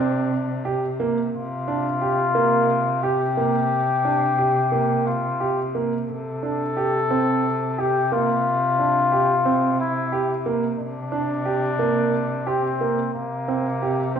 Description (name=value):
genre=contemporary instrumental, chamber music in an uneven meter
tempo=178 BPM (eighths)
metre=7/8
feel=straight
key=C mixolydian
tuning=A4 = 440 Hz
part: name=trumpet with cup mute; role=second line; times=0.0-14.2 s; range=Bb3 to A4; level=-23 LUFS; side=left 4 dB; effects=none
part: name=warm concert grand piano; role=arpeggios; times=0.0-14.2 s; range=Bb3 to G4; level=-24 LUFS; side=right 4 dB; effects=none
part: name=muted cello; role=bass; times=0.0-14.2 s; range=C3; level=-28 LUFS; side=right 1 dB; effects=none
room=wet scoring stage reverb, RT60 1.4 s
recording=minimal, uncompressed stereo recording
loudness=-20 LUFS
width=side -7 dB against mid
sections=0.0-14.2 A section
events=none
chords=0.0 Csus2; 13.1 C5